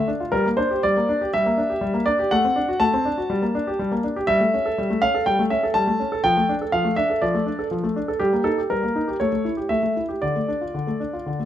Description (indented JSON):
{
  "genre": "classical-period piano sonatina",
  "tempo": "122 BPM",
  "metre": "4/4",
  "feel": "rubato",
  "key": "D minor",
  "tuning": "A4 = 440 Hz",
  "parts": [
    { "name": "clear grand piano", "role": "solo", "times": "0.0-11.5 s", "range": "D3 to A5", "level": "-19 LUFS", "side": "equal", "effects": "none" }
  ],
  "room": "light reverb",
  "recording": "close, detailed microphones",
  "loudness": "-19 LUFS",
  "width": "side -11 dB against mid",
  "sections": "0.0-11.5 A section",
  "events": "none",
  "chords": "0.3 Gm; 2.3 D7/A; 3.3 Gm; 4.3 A7/G; 6.2 Dm/F; 8.2 Eb/G; 9.2 A7; 10.2 Dm"
}